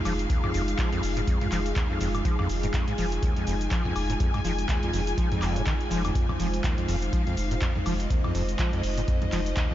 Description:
acid house; 123 BPM; 4/4; swing 57% on 16ths; F minor; A4 = 438 Hz
dark analog pad; sustained chords; 0.0-9.7 s; Ab3 to C5; -32 LUFS; equal; chorus, sidechain pumping
clear studio string section; texture; 0.0-9.7 s; Eb5 to Ab5; -37 LUFS; left 3 dB; sidechain pumping
overdriven acid bass; riff; 0.1-9.7 s; Eb2 to F3; -31 LUFS; equal; distortion, ensemble chorus, sidechain pumping, tape echo
warm sub bass; bass; 0.1-9.5 s; F1; -30 LUFS; equal; sidechain pumping
electro analog drum machine; drums; 0.1-9.7 s; handclaps, hi-hat, shaker, toms, woodblock; -33 LUFS; equal
electronic kick drum; drums; 0.3-9.7 s; -27 LUFS; equal
light reverb, digital ambience; nothing above 7.5 kHz; -24 LUFS; side -13 dB against mid
0.0-9.7 A section
0.0 Fm7
| 0.30 0.79 1.27 1.76 | 2.25 2.74 3.23 3.71 | 4.20 4.69 5.18 5.67 | 6.15 6.64 7.13 7.62 | 8.10 8.59 9.08 9.57

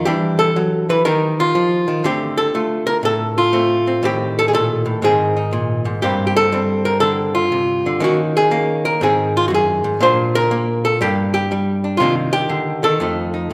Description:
solo jazz; 121 BPM; 4/4; swing 67% on 8ths; A4 = 441 Hz
archtop guitar, miked and amplified; solo; 0.0-13.5 s; F2 to C5; -17 LUFS; equal
wet recital hall reverb, RT60 1.6 s; recorded in a church or concert hall; -17 LUFS; mono
0.0-13.5 A section
0.1 Em11; 1.1 Ebadd9; 2.1 Dm7; 4.0 Am7b5; 5.0 Abadd9; 6.0 Gm11; 8.0 Eb5; 9.0 Ab7; 10.0 Bb; 11.0 Gm; 12.0 Cm9; 13.0 F7
| 0.07 0.56 1.06 1.55 | 2.05 2.55 3.04 3.54 | 4.04 4.54 5.03 5.53 | 6.03 6.52 7.02 7.52 | 8.01 8.51 9.01 9.51 | 10.01 10.50 11.00 11.50 | 12.00 12.50 13.00 13.50

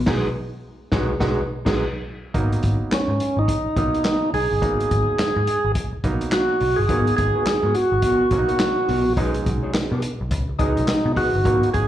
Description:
funk; 105 BPM; 4/4; swing 60% on 16ths; G# minor; A4 = 440 Hz
vintage muted picked electric bass; bass; 0.0-11.9 s; G1 to B2; -24 LUFS; equal
mellow electric guitar; accompaniment; 0.1-1.8, 6.9-11.8 s; B3 to C#5; -27 LUFS; left 2 dB; slapback echo
mellow clav; stabs; 0.1-11.9 s; F#3 to F#4; -28 LUFS; right 4 dB; slapback echo
vintage drum kit; drums; 0.1-11.9 s; crash cymbal, handclaps, hi-hat, kick drum, snare drum; -25 LUFS; equal
percussive tonewheel organ; melody; 2.9-11.9 s; C#4 to G#4; -21 LUFS; right 1 dB; slow rotary speaker, slapback echo
light reverb, small room reverb; live gig heard through the venue's PA, club reverb; -18 LUFS; side -12 dB against mid
0.0-2.3 A section; 2.3-11.9 B section
band accent 0.1-2.3; tonewheel organ solo 2.3-11.9
0.1 B6; 2.3 G#m9; 9.2 B6
| 0.07 0.64 1.21 1.78 | 2.34 2.91 3.48 4.05 | 4.62 5.19 5.76 6.33 | 6.89 7.46 8.03 8.60 | 9.17 9.74 10.31 10.88 | 11.45

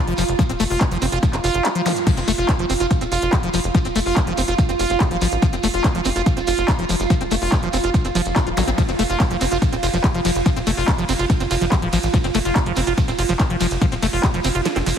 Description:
psychedelic trance; 143 BPM; 4/4; straight; F major; A4 = 440 Hz
evolving wavetable pad; sustained chords; 0.0-15.0 s; F4; -26 LUFS; right 6 dB; chorus, built-in reverb, sidechain pumping
liquid acid bass; riff; 0.1-14.9 s; F3 to F4; -23 LUFS; moving between left 7 dB and right 4 dB; chorus, auto-pan, sidechain pumping, digital delay
tight sequencer bass; bass; 0.1-14.9 s; Eb1 to A1; -24 LUFS; equal
techno drum kit; drums; 0.1-14.9 s; crash cymbal, handclaps, hi-hat, ride cymbal, snare drum; -27 LUFS; equal; overdrive, studio reverb
shekere; percussion; 0.2-15.0 s; -31 LUFS; right 3 dB
electronic kick drum; drums; 0.4-14.3 s; -18 LUFS; equal; studio reverb
swell and zap; sound effects; 1.4-2.1, 8.6-8.7 s; -29 LUFS; right 2 dB
light reverb; heavily compressed radio sound, multiband compression; -17 LUFS; side -8 dB against mid
0.0-15.0 A section
swell 1.4-2.1; kick drops out 14.7-15.0; drum fill 14.7-15.0
0.0 F5
| 0.39 0.81 1.23 1.65 | 2.07 2.49 2.91 3.33 | 3.75 4.17 4.58 5.00 | 5.42 5.84 6.26 6.68 | 7.10 7.52 7.94 8.36 | 8.78 9.20 9.62 10.04 | 10.46 10.88 11.30 11.72 | 12.14 12.56 12.98 13.40 | 13.81 14.23 14.65

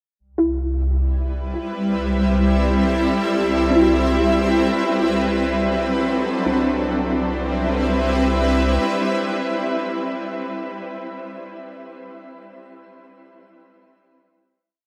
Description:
ambient; 76 BPM; 4/4; straight; C lydian; A4 = 443 Hz
shimmering ambient pad; sustained chords; 1.3-10.4 s; F#3 to E5; -22 LUFS; equal; chorus, built-in reverb, shimmer reverb
round analog bass; bass; 0.2-8.8 s; C2; -27 LUFS; equal
soft round pluck; arpeggios; 0.4-10.7 s; C4 to F#4; -27 LUFS; equal
wet huge ambient reverb, RT60 8.4 s; -20 LUFS; mono
0.2-6.5 A section; 6.5-9.6 final chord
fade-out on analog synth bass 0.2-6.5
0.2 Cmaj7; 1.8 Am7/C; 3.3 Cmaj7; 4.9 D7/C; 6.5 Cmaj7
| 0.21 0.99 1.76 2.54 | 3.31 4.08 4.87 5.67 | 6.46 7.26 8.04 8.82

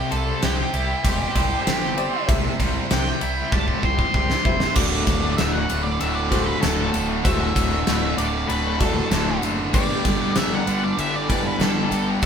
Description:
classic rock; 97 BPM; 4/4; straight; D mixolydian; A4 = 440 Hz
octave-fuzz lead guitar; melody; 0.0-12.3 s; G4 to C6; -27 LUFS; equal; distortion
bright concert grand piano; accompaniment; 0.0-12.3 s; F#4 to E5; -32 LUFS; left 4 dB
cranked stack guitar; riff; 0.0-12.3 s; D2 to C5; -28 LUFS; left 6 dB; overdrive, tremolo
tight distorted guitar; riff; 0.0-12.3 s; D2 to C5; -27 LUFS; right 7 dB; distortion
fuzz picked electric bass; bass; 0.1-12.3 s; D1 to C2; -27 LUFS; equal; overdrive
gated 80s drum kit; drums; 0.1-12.3 s; crash cymbal, kick drum, ride cymbal, snare drum; -23 LUFS; equal
fuzz guitar; riff; 4.8-12.3 s; D2 to G3; -28 LUFS; equal; distortion
tambourine; percussion; 4.8-12.3 s; -40 LUFS; left 6 dB
moderate studio reverb, RT60 0.8 s; band playing live in one room; -19 LUFS; side -7 dB against mid
0.0-4.8 A section; 4.8-12.3 B section
lead electric guitar solo 0.0-4.8; drum fill 3.5-4.8
0.0 C; 4.8 D; 9.7 G
0.42 1.04 1.66 | 2.28 2.90 3.52 4.14 | 4.76 5.39 6.01 6.63 | 7.25 7.87 8.49 9.12 | 9.74 10.36 10.98 11.60 | 12.22

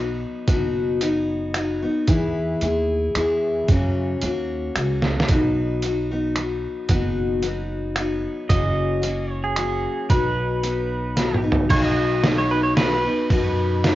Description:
honky-tonk and classic country; 112 BPM; 3/4; straight; B major; A4 = 436 Hz
picked steel-string acoustic guitar; accompaniment; 0.0-13.9 s; F#2 to G#4; -23 LUFS; left 2 dB; cassette tape
upright bass; bass; 0.0-13.9 s; F#1 to F#2; -27 LUFS; right 1 dB
trip hop sampler-style drum kit; drums; 0.5-13.9 s; crash cymbal, finger snaps, hi-hat, kick drum, ride cymbal, snare drum, toms; -22 LUFS; right 1 dB; cassette tape
pedal steel guitar; second line; 8.5-13.9 s; G#4 to D#5; -25 LUFS; right 2 dB; cassette tape
light reverb; home recording on cassette, nothing above 7.5 kHz; -19 LUFS; side -15 dB against mid
0.0-11.7 A section; 11.7-13.9 B section
drum fill 5.0, 11.2-11.7; pedal steel guitar solo 11.7-13.9
0.0 B; 2.1 E; 3.7 F#; 5.3 B; 8.5 F#; 10.1 B
| 0.48 1.02 1.55 | 2.09 2.62 3.16 | 3.69 4.23 4.76 | 5.29 5.83 6.36 | 6.90 7.43 7.96 | 8.50 9.03 9.57 | 10.10 10.64 11.17 | 11.71 12.24 12.78 | 13.31 13.85

